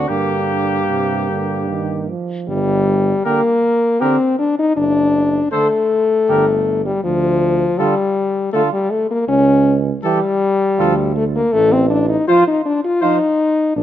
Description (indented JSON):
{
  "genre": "classical, brass quintet",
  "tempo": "80 BPM",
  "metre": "3/4",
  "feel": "rubato",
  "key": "G minor",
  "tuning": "A4 = 440 Hz",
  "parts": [
    { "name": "clear trumpet", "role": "melody", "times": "0.0-13.2 s", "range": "G4 to C5", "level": "-24 LUFS", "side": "left 5 dB", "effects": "none" },
    { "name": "mellow flugelhorn", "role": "second line", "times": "0.0-13.2 s", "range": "Bb3 to A4", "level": "-23 LUFS", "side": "right 10 dB", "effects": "none" },
    { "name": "warm French horn", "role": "accompaniment", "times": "0.0-13.8 s", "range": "F3 to F4", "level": "-15 LUFS", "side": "left 2 dB", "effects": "none" },
    { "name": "warm trombone", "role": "accompaniment", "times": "0.0-13.2 s", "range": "C3 to F3", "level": "-25 LUFS", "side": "right 4 dB", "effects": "none" },
    { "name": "warm tuba", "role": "bass", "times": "0.0-13.8 s", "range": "F#1 to G2", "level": "-21 LUFS", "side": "right 5 dB", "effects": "none" }
  ],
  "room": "light reverb",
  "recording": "close, detailed microphones",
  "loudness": "-14 LUFS",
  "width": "side -11 dB against mid",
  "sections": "0.0-2.5 A section; 2.5-13.8 B section",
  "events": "none",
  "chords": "0.1 Gm; 4.8 D/F#; 6.3 Gm; 7.0 Dm; 9.3 A7/C# (rootless); 10.8 Dm; 11.5 F7/A",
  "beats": "| 0.10 0.90 1.69 | 2.48 3.25 4.01 | 4.76 5.52 6.28 | 7.04 7.79 8.54 | 9.29 10.04 10.79 | 11.53 12.28 13.02 | 13.77"
}